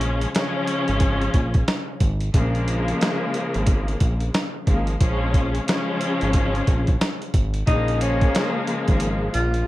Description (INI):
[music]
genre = hip hop, boom-bap hip-hop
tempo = 90 BPM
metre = 4/4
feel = swing 62% on 16ths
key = Bb minor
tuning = A4 = 439 Hz
[part]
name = warm studio string section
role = accompaniment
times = 0.0-9.7 s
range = Db3 to Db4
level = -24 LUFS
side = left 1 dB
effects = high-pass filter, low-pass filter
[part]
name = fat analog bass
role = bass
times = 0.0-9.6 s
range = Ab1 to Bb1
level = -24 LUFS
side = equal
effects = none
[part]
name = boom bap sampler-style drum kit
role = drums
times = 0.0-9.7 s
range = hi-hat, kick drum, snare drum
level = -22 LUFS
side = equal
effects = none
[part]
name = breathy tenor saxophone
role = melody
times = 7.7-9.6 s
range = Db4 to F4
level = -26 LUFS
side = left 1 dB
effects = high-pass filter, low-pass filter
[sound]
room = light reverb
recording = none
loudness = -19 LUFS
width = side -16 dB against mid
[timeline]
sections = 0.0-7.7 A section; 7.7-9.7 B section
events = none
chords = 0.0 Bbm7